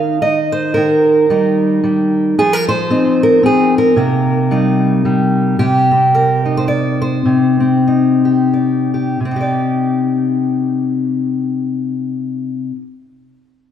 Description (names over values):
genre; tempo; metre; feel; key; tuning
folk, solo fingerstyle acoustic guitar; 82-112 BPM; 3/4; swing 59% on 8ths; C minor; A4 = 436 Hz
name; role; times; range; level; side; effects
fingerpicked steel-string acoustic guitar; solo; 0.0-12.9 s; C3 to F5; -12 LUFS; equal; none
room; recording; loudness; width
moderate scoring stage reverb, RT60 1.9 s; recorded in a church or concert hall; -12 LUFS; side -9 dB against mid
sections
0.0-5.6 A section; 5.6-9.2 B section; 9.2-13.6 C section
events
slowing down 5.6-9.2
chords
0.0 Eb; 2.4 F5; 4.0 Cm7; 5.6 Cmadd9